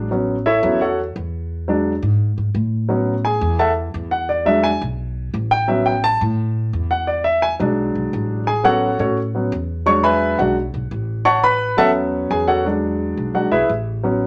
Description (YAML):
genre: latin, salsa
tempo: 172 BPM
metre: 4/4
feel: straight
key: A major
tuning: A4 = 443 Hz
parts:
  - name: clear grand piano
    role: accompaniment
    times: 0.0-14.3 s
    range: F#3 to C#6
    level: -19 LUFS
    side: equal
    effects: none
  - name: upright bass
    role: bass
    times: 0.0-14.3 s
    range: A1 to A2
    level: -26 LUFS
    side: equal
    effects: none
room: wet club reverb, RT60 0.7 s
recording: none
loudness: -19 LUFS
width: mono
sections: 0.0-14.3 A section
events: grand piano solo 0.0-14.3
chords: 0.1 A6; 1.5 E7; 2.9 A6; 4.3 E7; 5.7 A6; 7.1 E7; 8.5 A6; 9.9 E7; 11.3 A6; 12.7 E7